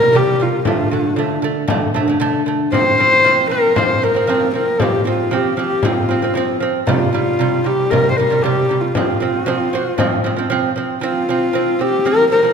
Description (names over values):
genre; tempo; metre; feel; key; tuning
mongolian traditional, Mongolian folk; 116 BPM; 4/4; straight; F zhi mode; A4 = 440 Hz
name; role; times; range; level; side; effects
dark horsehead fiddle; melody; 0.0-12.5 s; F4 to C5; -16 LUFS; left 2 dB; none
lute; arpeggios; 0.0-12.5 s; C3 to C4; -18 LUFS; right 4 dB; none
frame drum; percussion; 0.1-10.8 s; none; -22 LUFS; left 3 dB; none
room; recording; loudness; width
wet concert hall reverb, RT60 1.9 s; none; -14 LUFS; side -6 dB against mid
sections
0.0-11.0 A section; 11.0-12.5 A section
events
none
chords
0.0 C5; 0.7 D5; 2.7 F5; 6.9 C5; 8.9 F5